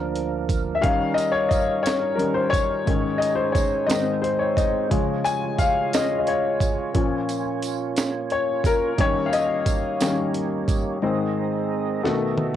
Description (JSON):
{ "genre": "slow gospel", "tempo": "59 BPM (dotted quarters)", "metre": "6/8", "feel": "straight", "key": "unclear", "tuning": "A4 = 440 Hz", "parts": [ { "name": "clear grand piano", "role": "accompaniment", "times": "0.0-12.6 s", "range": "Ab2 to Ab5", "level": "-22 LUFS", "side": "left 4 dB", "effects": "cassette tape, plate reverb" }, { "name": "tonewheel organ", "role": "sustained chords", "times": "0.0-12.6 s", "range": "D2 to Eb5", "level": "-28 LUFS", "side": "right 8 dB", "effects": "slow rotary speaker, overdrive, chorus vibrato, cassette tape, plate reverb" }, { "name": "breakbeat sampler-style drum kit", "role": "drums", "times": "0.2-12.5 s", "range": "hi-hat, kick drum, snare drum, toms", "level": "-24 LUFS", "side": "right 2 dB", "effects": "none" }, { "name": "tambourine", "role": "percussion", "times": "0.5-11.0 s", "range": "none", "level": "-38 LUFS", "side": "right 11 dB", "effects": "none" } ], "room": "moderate booth ambience, RT60 0.2 s", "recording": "home recording on cassette", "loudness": "-20 LUFS", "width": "side -10 dB against mid", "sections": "0.0-12.6 A section", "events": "grand piano solo 0.0-12.6; drum fill 12.0-12.6", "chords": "0.0 Bb/D; 0.8 Eb7; 2.9 Absus4; 4.9 Db; 6.9 Bbm; 9.0 Eb7; 11.0 Ab; 12.0 Cb7", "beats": "| 0.83 1.85 | 2.87 3.89 | 4.91 5.93 | 6.95 7.97 | 8.98 10.00 | 11.02 12.03" }